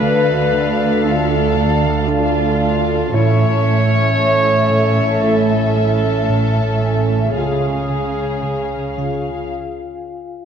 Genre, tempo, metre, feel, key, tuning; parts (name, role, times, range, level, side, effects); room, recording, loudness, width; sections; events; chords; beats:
cinematic; 56 BPM; 4/4; straight; A4 = 440 Hz
dark studio violin section; melody; 0.0-9.5 s; E5 to F5; -24 LUFS; left 3 dB
clear clarinet; second line; 0.0-9.5 s; F4 to C#5; -23 LUFS; right 1 dB
warm studio violin section; second line; 0.0-9.5 s; F4 to C#5; -23 LUFS; left 1 dB
warm studio viola section; accompaniment; 0.0-9.5 s; C#4 to A4; -22 LUFS; equal
smooth synth bass; riff; 0.0-9.3 s; A2 to D4; -22 LUFS; right 2 dB
dark studio double bass section; bass; 0.0-9.5 s; A1 to D2; -23 LUFS; right 3 dB
warm studio cello section; bass; 0.0-9.5 s; D2 to C#3; -21 LUFS; right 2 dB
dark studio violin section; texture; 0.0-2.6 s; barely audible
vibraphone with medium hard mallets; texture; 0.0-10.4 s; E#4 to A5; -30 LUFS; right 1 dB
warm French horn section; sustained chords; 1.0-7.8 s; G#3 to F4; -26 LUFS; left 3 dB
wet scoring stage reverb, RT60 1.8 s; worn, warbling old tape, cassette tape, warbly pitch drift; -14 LUFS; side -8 dB against mid
0.0-10.4 A section
break 9.5-10.4
0.0 Dm; 3.1 A; 7.4 C#
0.01 1.03 2.06 | 3.13 4.17 5.22 6.28 | 7.35 8.43 9.52